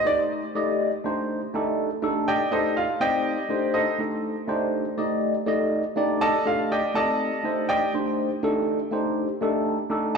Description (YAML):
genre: jazz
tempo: 122 BPM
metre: 4/4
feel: swing 55% on 16ths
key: C dorian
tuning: A4 = 440 Hz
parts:
  - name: bright grand piano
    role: melody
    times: 0.0-10.2 s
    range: Eb4 to A5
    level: -25 LUFS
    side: equal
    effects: slapback echo, tape echo
  - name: bright tine electric piano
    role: accompaniment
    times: 0.0-10.2 s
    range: A3 to Eb5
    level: -24 LUFS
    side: equal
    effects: phaser, slapback echo
room: moderate lush hall reverb, RT60 2.8 s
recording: live gig heard through the venue's PA, club reverb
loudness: -22 LUFS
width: side -5 dB against mid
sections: 0.0-10.2 A section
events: grand piano solo 0.0-10.2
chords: 0.0 Cm69